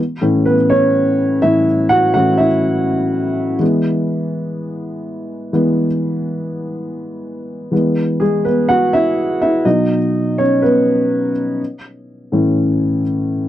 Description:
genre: pop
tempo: 124 BPM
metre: 4/4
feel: straight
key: E major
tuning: A4 = 436 Hz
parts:
  - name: dark upright piano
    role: solo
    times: 0.2-13.5 s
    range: A2 to F#5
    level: -14 LUFS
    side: equal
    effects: none
room: light reverb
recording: dry, close 1970s-style studio recording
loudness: -13 LUFS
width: side -12 dB against mid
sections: 0.0-7.7 A section; 7.7-13.5 B section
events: upright piano solo 0.0-7.7, 7.7-13.5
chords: 0.0 Aadd9; 3.6 E; 9.7 B; 11.6 A

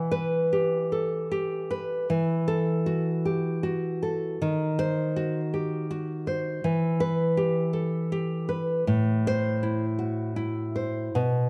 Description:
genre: romantic piece for solo classical guitar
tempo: 80 BPM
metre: 3/4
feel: uneven beats, rubato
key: E minor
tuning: A4 = 441 Hz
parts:
  - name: nylon-string guitar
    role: solo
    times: 0.0-11.5 s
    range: A2 to B#4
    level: -27 LUFS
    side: equal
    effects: none
room: moderate recital hall reverb, RT60 1.8 s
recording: dark, warm production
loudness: -27 LUFS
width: mono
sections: 0.0-11.5 A section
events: none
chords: 0.0 Em; 2.1 Emadd9; 4.4 D#m6; 6.6 Em; 8.9 Am

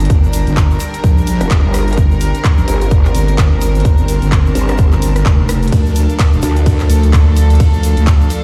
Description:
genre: bass house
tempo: 128 BPM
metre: 4/4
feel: swing 59% on 16ths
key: G minor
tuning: A4 = 443 Hz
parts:
  - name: rich symphonic string section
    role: sustained chords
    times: 0.0-8.4 s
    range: F3 to Bb4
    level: -25 LUFS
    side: equal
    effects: sidechain pumping
  - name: wobble bass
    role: bass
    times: 0.0-8.3 s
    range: E1 to D2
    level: -15 LUFS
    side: equal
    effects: chorus, tube saturation, sidechain pumping
  - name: big-room dance drum kit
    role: drums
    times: 0.0-8.4 s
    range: handclaps, hi-hat, ride cymbal, rim click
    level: -27 LUFS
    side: equal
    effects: overdrive, small room ambience
  - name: tube shaker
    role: percussion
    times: 0.0-8.4 s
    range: none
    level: -36 LUFS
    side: equal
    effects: none
  - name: granular cloud pad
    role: texture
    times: 0.0-8.4 s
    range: D4 to A5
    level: -27 LUFS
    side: equal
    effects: built-in reverb, sidechain pumping
  - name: electronic kick drum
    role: drums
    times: 0.1-8.2 s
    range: none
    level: -13 LUFS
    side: equal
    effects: small room ambience
  - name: growl bass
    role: bass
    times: 1.4-6.9 s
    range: F1 to D2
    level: -17 LUFS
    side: equal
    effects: chorus, overdrive, sidechain pumping
room: digital ambience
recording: played on a big sound system in a bare room, stone room reverb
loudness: -12 LUFS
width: mono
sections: 0.0-8.4 A section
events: none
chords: 0.0 Gm; 5.7 Dm

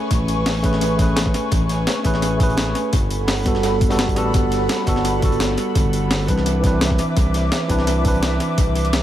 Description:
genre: liquid drum and bass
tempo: 170 BPM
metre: 4/4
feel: straight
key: A major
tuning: A4 = 440 Hz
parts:
  - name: tine electric piano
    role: accompaniment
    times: 0.0-9.0 s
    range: E3 to B4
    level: -22 LUFS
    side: equal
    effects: analog delay
  - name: airy breathy pad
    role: sustained chords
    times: 0.0-9.0 s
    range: A4 to D6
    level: -26 LUFS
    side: right 2 dB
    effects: chorus, sidechain pumping
  - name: smooth gliding synth bass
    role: bass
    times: 0.1-9.0 s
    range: G1 to C2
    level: -22 LUFS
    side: equal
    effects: none
  - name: breakbeat sampler-style drum kit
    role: drums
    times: 0.1-9.0 s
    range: hi-hat, snare drum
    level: -25 LUFS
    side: left 1 dB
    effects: overdrive, analog delay
  - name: crunchy breakbeat drum kit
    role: drums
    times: 0.1-9.0 s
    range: hi-hat, snare drum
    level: -32 LUFS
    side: equal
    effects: high-pass filter on hats, high-pass filter on snare, high-pass filter on room, analog delay
  - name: electronic kick drum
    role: drums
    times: 0.1-8.7 s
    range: none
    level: -20 LUFS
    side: equal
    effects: none
room: light reverb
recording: echo-heavy mix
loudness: -16 LUFS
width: side -12 dB against mid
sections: 0.0-9.0 A section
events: none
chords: 0.0 Amaj9; 2.9 Gmaj9; 6.3 Cmaj9

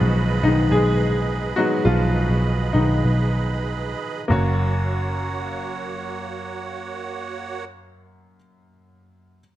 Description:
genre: piano-driven pop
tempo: 93-108 BPM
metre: 4/4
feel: straight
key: F# major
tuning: A4 = 439 Hz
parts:
  - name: clear upright piano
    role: accompaniment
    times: 0.0-9.4 s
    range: F#2 to C#5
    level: -23 LUFS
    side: left 2 dB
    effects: none
  - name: musette accordion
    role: sustained chords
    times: 0.0-7.6 s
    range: A#3 to B5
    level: -29 LUFS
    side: right 6 dB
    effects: none
  - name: vintage muted picked electric bass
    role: bass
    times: 0.0-8.3 s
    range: F#1 to B1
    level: -21 LUFS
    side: equal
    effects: none
room: light reverb, small room ambience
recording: none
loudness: -20 LUFS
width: side -14 dB against mid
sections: 0.0-4.3 A section; 4.3-6.9 B section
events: slowing down 0.0-4.3; upright piano solo 0.0-4.3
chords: 0.0 G#m/B; 4.3 F#

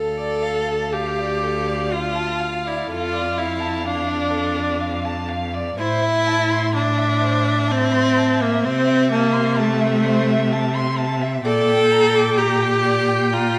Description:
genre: classical, slow romantic movement for string quartet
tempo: 63 BPM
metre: 3/4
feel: uneven beats, rubato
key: D minor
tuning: A4 = 440 Hz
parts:
  - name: rich violin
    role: melody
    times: 0.0-13.6 s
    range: E5 to G5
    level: -32 LUFS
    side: equal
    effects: none
  - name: rich violin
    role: second line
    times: 0.0-13.6 s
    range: A4 to D6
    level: -29 LUFS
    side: equal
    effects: none
  - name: clear viola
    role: accompaniment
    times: 0.0-13.6 s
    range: A3 to A4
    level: -22 LUFS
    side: equal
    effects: none
  - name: clear cello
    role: bass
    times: 0.0-13.6 s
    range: D2 to C3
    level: -26 LUFS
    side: equal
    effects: none
room: moderate scoring stage reverb, RT60 1.7 s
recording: none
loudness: -20 LUFS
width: mono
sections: 0.0-13.6 A section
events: none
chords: 0.0 Dm; 2.9 Dm/F; 5.8 Am; 8.7 Am/C; 11.4 Gm/Bb

